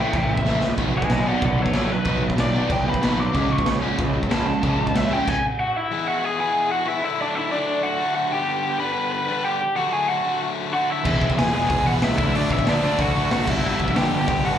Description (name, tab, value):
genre	punk rock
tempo	187 BPM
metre	4/4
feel	straight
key	unclear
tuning	A4 = 439 Hz
part	biting lead guitar	melody	0.0-14.6 s	D4 to D6	-24 LUFS	equal	overdrive, slapback echo
part	distorted electric guitar	riff	0.0-14.6 s	G2 to E4	-28 LUFS	left 7 dB	overdrive, slapback echo
part	sludgy distorted guitar	riff	0.0-5.3, 11.0-14.6 s	E2 to D4	-27 LUFS	right 7 dB	overdrive, slapback echo
part	thick fuzz guitar	riff	0.0-5.3, 11.0-14.6 s	E2 to D4	-28 LUFS	equal	distortion, slapback echo
part	fuzz picked electric bass	bass	0.1-5.2, 11.0-14.6 s	E1 to D2	-26 LUFS	equal	overdrive
part	raw garage drum kit	drums	0.1-5.3, 11.1-14.4 s	crash cymbal, hi-hat, kick drum, snare drum	-24 LUFS	equal	none
room	light reverb, studio ambience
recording	live gig heard through the venue's PA, club reverb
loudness	-19 LUFS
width	side -9 dB against mid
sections	0.0-5.9 A section; 5.9-14.6 B section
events	lead electric guitar solo 0.0-5.9; drum fill 0.5-0.8; stop 5.3-5.9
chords	0.0 A; 0.8 B; 3.3 C#5; 5.9 E; 7.0 D; 8.3 G; 9.8 D; 11.1 E; 12.2 D; 13.5 G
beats	0.13 0.45 | 0.78 1.10 1.42 1.74 | 2.06 2.38 2.70 3.02 | 3.34 3.67 3.99 4.31 | 4.63 4.95 5.27 5.59 | 5.91 6.24 6.56 6.88 | 7.20 7.52 7.84 8.16 | 8.48 8.80 9.13 9.45 | 9.77 10.09 10.41 10.73 | 11.06 11.38 11.70 12.02 | 12.34 12.66 12.99 13.31 | 13.63 13.95 14.28